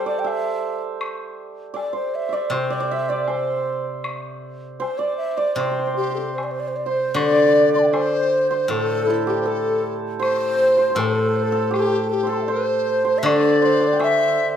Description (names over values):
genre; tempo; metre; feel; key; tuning
chinese traditional, Chinese chamber ensemble; 79 BPM; 4/4; rubato; C gong mode; A4 = 440 Hz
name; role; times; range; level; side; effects
breathy reedy low xiao; melody; 0.0-14.5 s; E4 to C6; -23 LUFS; left 1 dB; none
hammered dulcimer; second line; 0.0-14.6 s; E4 to G5; -24 LUFS; right 5 dB; none
steel-string zither; accompaniment; 0.0-14.6 s; A2 to G3; -24 LUFS; left 2 dB; none
woodblock; percussion; 0.3-14.2 s; none; -31 LUFS; left 2 dB; none
reedy large dizi; second line; 6.0-14.5 s; G4 to E5; -24 LUFS; left 4 dB; none
room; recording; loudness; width
moderate recital hall reverb, RT60 1.3 s; none; -18 LUFS; side -9 dB against mid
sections
0.0-7.2 A section; 7.2-14.6 B section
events
none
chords
none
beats
0.26 | 1.00 1.76 2.52 3.28 | 4.05 4.82 5.59 6.37 | 7.16 7.93 8.70 9.46 | 10.22 10.98 11.73 12.48 | 13.24 14.00